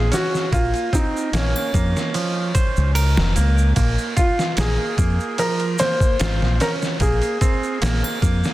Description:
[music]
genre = trip hop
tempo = 74 BPM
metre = 4/4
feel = straight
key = Bb minor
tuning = A4 = 440 Hz
[part]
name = felt-muted upright piano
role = melody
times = 0.0-7.8 s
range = Db4 to C5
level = -24 LUFS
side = equal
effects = tape echo
[part]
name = semi-hollow electric guitar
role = arpeggios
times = 0.0-8.5 s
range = F3 to C5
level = -26 LUFS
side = right 3 dB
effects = ping-pong delay
[part]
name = deep dub fingered electric bass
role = bass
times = 0.0-8.4 s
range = F1 to F2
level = -19 LUFS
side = equal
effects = tube saturation
[part]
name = trip hop sampler-style drum kit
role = drums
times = 0.1-8.5 s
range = kick drum, ride cymbal, snare drum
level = -22 LUFS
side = equal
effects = none
[part]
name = maracas and triangle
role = percussion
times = 0.1-8.5 s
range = none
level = -33 LUFS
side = right 2 dB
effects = none
[sound]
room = light reverb, digital ambience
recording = dense, heavily limited modern master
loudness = -17 LUFS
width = side -16 dB against mid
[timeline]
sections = 0.0-8.5 A section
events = none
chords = 0.0 Bbm

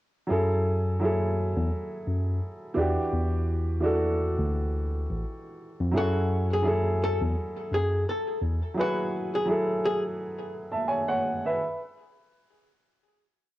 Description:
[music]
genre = hip hop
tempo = 85 BPM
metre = 4/4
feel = swing 58% on 16ths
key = F# minor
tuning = A4 = 441 Hz
[part]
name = dark upright piano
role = accompaniment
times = 0.3-11.8 s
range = E3 to A5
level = -28 LUFS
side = right 1 dB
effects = low-pass filter, cassette tape
[part]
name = mellow tine electric piano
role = bass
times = 0.3-8.6 s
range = A1 to F#2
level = -27 LUFS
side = equal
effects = medium stereo tremolo
[part]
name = archtop guitar, miked and amplified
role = melody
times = 6.0-10.0 s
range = F#4 to A4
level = -30 LUFS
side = left 1 dB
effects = low-pass filter, cassette tape, tape echo
[sound]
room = moderate spring reverb, RT60 1.6 s, small room ambience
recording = home recording on cassette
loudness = -25 LUFS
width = side -15 dB against mid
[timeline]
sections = 0.3-11.6 A section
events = none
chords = 0.3 F#m9; 2.8 Em9; 5.9 F#m9

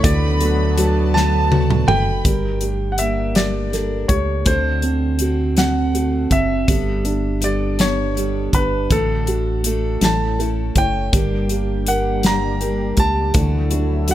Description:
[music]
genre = six-eight pop ballad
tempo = 54 BPM (dotted quarters)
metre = 6/8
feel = straight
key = unclear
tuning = A4 = 443 Hz
[part]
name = bright concert grand piano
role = melody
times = 0.0-14.1 s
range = A4 to Bb5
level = -24 LUFS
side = equal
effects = none
[part]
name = warm studio violin section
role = second line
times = 0.0-2.3 s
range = A5 to B5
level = -28 LUFS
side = right 2 dB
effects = none
[part]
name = felt-muted upright piano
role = accompaniment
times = 0.0-14.1 s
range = D3 to C#5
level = -23 LUFS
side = right 4 dB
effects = none
[part]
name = lush unison pad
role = sustained chords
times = 0.0-2.2, 11.1-14.1 s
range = D3 to G4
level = -27 LUFS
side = left 1 dB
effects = chorus
[part]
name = picked steel-string acoustic guitar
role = arpeggios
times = 0.0-14.1 s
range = G2 to B4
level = -27 LUFS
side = left 7 dB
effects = none
[part]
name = organ-like FM bass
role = bass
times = 0.0-14.1 s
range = F#1 to D2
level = -21 LUFS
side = equal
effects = none
[part]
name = modern studio drum kit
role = drums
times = 0.0-14.1 s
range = hi-hat, kick drum, snare drum, toms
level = -19 LUFS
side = equal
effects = none
[sound]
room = small room ambience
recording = none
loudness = -16 LUFS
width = side -12 dB against mid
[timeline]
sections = 0.0-2.3 A section; 2.3-14.1 B section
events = drum fill 1.1-2.3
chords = 0.0 D6; 2.3 Gmadd9; 4.5 D7; 6.7 Gadd9; 8.9 D/A; 10.0 A; 11.1 Gm; 13.3 Dadd9

